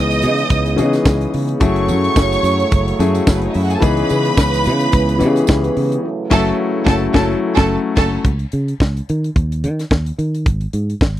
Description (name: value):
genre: disco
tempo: 108 BPM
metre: 4/4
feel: swing 56% on 16ths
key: unclear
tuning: A4 = 440 Hz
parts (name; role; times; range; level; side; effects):
- clear studio string section; second line; 0.0-8.2 s; B3 to D#6; -20 LUFS; right 3 dB; none
- warm concert grand piano; accompaniment; 0.0-8.3 s; E3 to G#4; -18 LUFS; left 4 dB; none
- dark French horn section; sustained chords; 0.0-8.2 s; C#3 to B3; -23 LUFS; right 3 dB; none
- fingered electric bass; bass; 0.0-11.2 s; F#1 to D#3; -19 LUFS; right 1 dB; none
- tight funk drum kit; drums; 0.1-11.2 s; crash cymbal, hi-hat, kick drum, snare drum; -15 LUFS; equal; none
- tambourine; percussion; 0.1-5.6 s; none; -35 LUFS; right 24 dB; none
room: little or no reverb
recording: dry, close 1970s-style studio recording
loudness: -14 LUFS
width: side -13 dB against mid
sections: 0.0-8.3 A section; 8.3-11.2 B section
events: band accent 6.0-8.3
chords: 0.0 C#m7; 1.6 F#m7; 3.8 C#m7; 6.0 F#m7; 8.3 N.C.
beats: 0.50 1.05 | 1.61 2.16 2.72 3.27 | 3.82 4.38 4.93 5.49 | 6.04 6.59 7.14 7.70 | 8.25 8.80 9.36 9.91 | 10.46 11.02